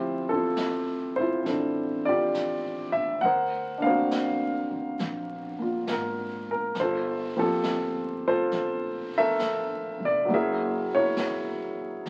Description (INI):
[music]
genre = jazz ballad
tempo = 68 BPM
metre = 4/4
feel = swing 68% on 8ths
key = D minor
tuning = A4 = 441 Hz
[part]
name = warm grand piano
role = accompaniment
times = 0.0-12.1 s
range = F3 to F#5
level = -28 LUFS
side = equal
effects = none
[part]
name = upright bass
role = bass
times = 0.0-12.1 s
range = F1 to D2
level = -43 LUFS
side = equal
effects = none
[part]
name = jazz brush drum kit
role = drums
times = 0.6-12.1 s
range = brushed snare drum, hi-hat, snare drum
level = -41 LUFS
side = equal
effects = none
[sound]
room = light reverb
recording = very old 78 rpm record, vinyl crackle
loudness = -27 LUFS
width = mono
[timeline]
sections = 0.0-12.1 A section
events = none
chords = 0.0 Dm11; 3.2 D7alt; 6.8 Gm11; 10.3 F#9